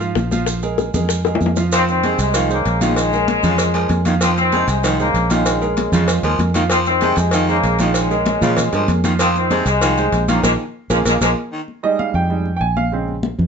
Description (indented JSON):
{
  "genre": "latin, salsa",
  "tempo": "193 BPM",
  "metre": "4/4",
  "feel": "straight",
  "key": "F minor",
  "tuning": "A4 = 439 Hz",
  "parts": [
    { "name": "clear grand piano", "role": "accompaniment", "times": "0.0-13.1 s", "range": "Db3 to Ab5", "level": "-22 LUFS", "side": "right 6 dB", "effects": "none" },
    { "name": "fingered electric bass", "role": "bass", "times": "0.0-13.5 s", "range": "Bb1 to Bb2", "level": "-20 LUFS", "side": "equal", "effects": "none" },
    { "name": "bongos and cowbell", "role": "percussion", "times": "0.0-11.3 s", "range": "none", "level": "-24 LUFS", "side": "left 2 dB", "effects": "none" },
    { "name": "congas", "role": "percussion", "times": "0.0-13.5 s", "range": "none", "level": "-24 LUFS", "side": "left 3 dB", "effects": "none" },
    { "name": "maracas", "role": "percussion", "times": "0.0-11.3 s", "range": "none", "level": "-29 LUFS", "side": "right 6 dB", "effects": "none" },
    { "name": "clear trombone section", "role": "melody", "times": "1.7-11.3 s", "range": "C3 to C4", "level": "-19 LUFS", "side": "left 3 dB", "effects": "none" },
    { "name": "raspy baritone saxophone", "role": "second line", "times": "1.7-11.6 s", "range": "C3 to F3", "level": "-23 LUFS", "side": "left 1 dB", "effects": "none" }
  ],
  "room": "light reverb",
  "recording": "nothing above 7.9 kHz",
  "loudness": "-15 LUFS",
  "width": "side -6 dB against mid",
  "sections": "0.0-1.7 A section; 1.7-11.7 B section; 11.7-13.5 C section",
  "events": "drum fill 1.3-1.7, 10.4-11.7; band accent 10.4-11.7; grand piano solo 11.7-13.5",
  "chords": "0.5 Bb5; 1.7 Fm7; 3.0 Bbm7; 4.2 Fm7; 5.5 Bbm7; 6.7 Fm7; 8.0 Bbm7; 9.2 Fm7; 10.4 Bb7(no3); 11.7 Fm7; 12.9 Bbm7"
}